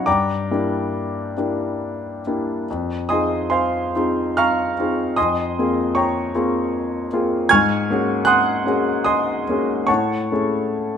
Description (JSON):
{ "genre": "classical, impressionist solo piano", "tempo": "67-80 BPM", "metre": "3/4", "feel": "rubato", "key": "unclear", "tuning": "A4 = 438 Hz", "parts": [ { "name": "clear grand piano", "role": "solo", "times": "0.0-11.0 s", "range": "F2 to Ab6", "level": "-18 LUFS", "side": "equal", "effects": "none" } ], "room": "moderate large studio reverb, RT60 1.5 s", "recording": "none", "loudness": "-18 LUFS", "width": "side -8 dB against mid", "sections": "0.0-11.0 A section", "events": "none", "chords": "0.1 Gm6; 2.7 Fm7; 5.2 Bbm9/F; 7.5 Ab9sus4; 9.9 Amaj7" }